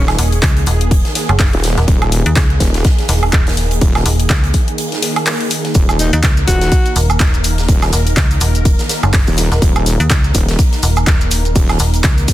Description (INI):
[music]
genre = bass house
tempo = 124 BPM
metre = 4/4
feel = swing 57% on 16ths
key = Eb minor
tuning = A4 = 440 Hz
[part]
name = bright alto saxophone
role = melody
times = 0.0, 6.0-7.0 s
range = Eb4 to Gb4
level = -21 LUFS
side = left 1 dB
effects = digital delay
[part]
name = sweeping resonant pad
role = sustained chords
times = 0.0-12.3 s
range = Eb3 to Bb4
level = -23 LUFS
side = equal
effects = chorus, sidechain pumping
[part]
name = wobble bass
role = bass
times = 0.0-11.8 s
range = Eb1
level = -16 LUFS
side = equal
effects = chorus, tube saturation, sidechain pumping
[part]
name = house drum kit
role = drums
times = 0.1-12.3 s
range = handclaps, hi-hat, woodblock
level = -19 LUFS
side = equal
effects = none
[part]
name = huge arena drum kit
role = drums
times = 0.1-12.3 s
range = hi-hat, snare drum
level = -25 LUFS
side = right 2 dB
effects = high-pass filter on hats, high-pass filter on snare, high-pass filter on room
[part]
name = metallic FM bass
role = bass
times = 0.2-12.3 s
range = Eb1 to Eb2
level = -14 LUFS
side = equal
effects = sidechain pumping
[part]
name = electronic kick drum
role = drums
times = 0.4-12.3 s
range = none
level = -13 LUFS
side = equal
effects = none
[part]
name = maracas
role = percussion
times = 5.7-12.3 s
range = none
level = -26 LUFS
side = right 3 dB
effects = none
[sound]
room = small room ambience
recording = dense, heavily limited modern master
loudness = -11 LUFS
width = side -14 dB against mid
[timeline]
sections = 0.0-12.3 A section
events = break 4.8-5.8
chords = 0.0 Eb5